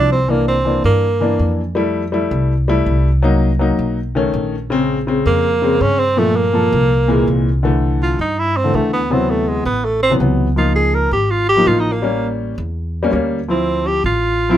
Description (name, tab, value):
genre	Afro-Cuban jazz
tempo	164 BPM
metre	4/4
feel	straight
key	unclear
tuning	A4 = 441 Hz
part	warm tenor saxophone	melody	0.0-1.5, 5.3-14.6 s	Ab3 to Bb4	-16 LUFS	right 2 dB	none
part	warm baby grand piano	accompaniment	0.0-14.6 s	Bb2 to A4	-18 LUFS	left 2 dB	none
part	upright bass	bass	0.0-14.6 s	Ab1 to G2	-19 LUFS	equal	none
room	light reverb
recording	minimal, uncompressed stereo recording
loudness	-14 LUFS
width	side -11 dB against mid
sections	0.0-7.6 A section; 7.6-14.6 B section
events	tenor saxophone solo 7.6-14.6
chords	0.3 C9; 1.8 Fmaj9; 3.2 Cm7b5; 4.0 B9; 4.7 Bbm9; 6.2 Gm9; 6.9 Caug7; 7.6 C69; 9.1 D13; 10.6 Db69; 12.0 A7b9; 13.5 Dm9